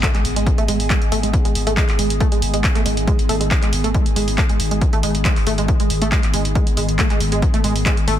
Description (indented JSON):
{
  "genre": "driving peak-time techno",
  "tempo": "138 BPM",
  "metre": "4/4",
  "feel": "straight",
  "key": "G# phrygian",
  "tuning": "A4 = 440 Hz",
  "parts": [
    { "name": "tight sequenced synth", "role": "riff", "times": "0.0-8.1 s", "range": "G#3 to A3", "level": "-24 LUFS", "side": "right 2 dB", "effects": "chorus, cassette tape, sidechain pumping, ping-pong delay" },
    { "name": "warm sub bass", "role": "bass", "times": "0.0-8.2 s", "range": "G#1", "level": "-23 LUFS", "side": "equal", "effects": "sidechain pumping, low-pass filter" },
    { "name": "metallic inharmonic drone", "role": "drone", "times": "0.8-8.2 s", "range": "G#2 to D#3", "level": "-28 LUFS", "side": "left 2 dB", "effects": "chorus, built-in reverb, phaser, sidechain pumping" },
    { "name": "electronic kick drum", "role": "drums", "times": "0.0-8.0 s", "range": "none", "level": "-18 LUFS", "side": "equal", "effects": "none" },
    { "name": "punchy analog drum machine", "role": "drums", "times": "0.0-8.2 s", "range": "handclaps, hi-hat", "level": "-24 LUFS", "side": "equal", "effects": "none" },
    { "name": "impact", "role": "sound effects", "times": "0.0-1.3 s", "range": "none", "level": "-31 LUFS", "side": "left 1 dB", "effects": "none" },
    { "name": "warbly tape-like pad", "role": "texture", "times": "0.0-8.2 s", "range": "B3 to G#5", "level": "-27 LUFS", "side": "right 1 dB", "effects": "chorus, built-in reverb, phaser, sidechain pumping" }
  ],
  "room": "little or no reverb",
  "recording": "dense, heavily limited modern master",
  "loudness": "-15 LUFS",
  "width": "side -11 dB against mid",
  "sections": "0.0-8.2 A section",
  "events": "impact 0.0-1.3",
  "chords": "0.0 G#m"
}